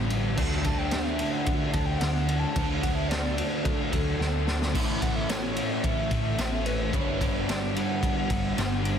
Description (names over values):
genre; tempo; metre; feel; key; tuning
rock, shoegaze and dream pop; 110 BPM; 4/4; straight; unclear; A4 = 439 Hz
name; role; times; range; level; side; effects
pure sine lead; melody; 0.0-8.8 s; A4 to A5; -35 LUFS; equal; chorus, tape echo
evolving wavetable pad; sustained chords; 0.0-9.0 s; G4 to C#6; -42 LUFS; equal; none
biting overdriven guitar; riff; 0.0-9.0 s; G2 to E4; -35 LUFS; left 1 dB; none
crunchy overdriven guitar; riff; 0.0-9.0 s; A2 to B4; -33 LUFS; right 11 dB; reverse reverb
thick fuzz guitar; riff; 0.0-9.0 s; G2 to D4; -34 LUFS; left 12 dB; distortion, analog chorus
hollow-body short-scale picked electric bass; bass; 0.0-9.0 s; G1 to D2; -30 LUFS; equal; none
raw garage drum kit; drums; 0.1-9.0 s; crash cymbal, kick drum, ride cymbal, snare drum; -29 LUFS; equal; none
twelve-string electric guitar; arpeggios; 4.7-9.0 s; E3 to A4; -39 LUFS; left 14 dB; lush chorus, tape echo
tambourine; percussion; 5.3-8.7 s; none; -44 LUFS; right 18 dB; none
room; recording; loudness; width
small room ambience; dense, heavily limited modern master; -24 LUFS; side -8 dB against mid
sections
0.0-9.0 A section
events
drum fill 4.2-4.7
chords
0.4 D; 4.7 A; 6.9 G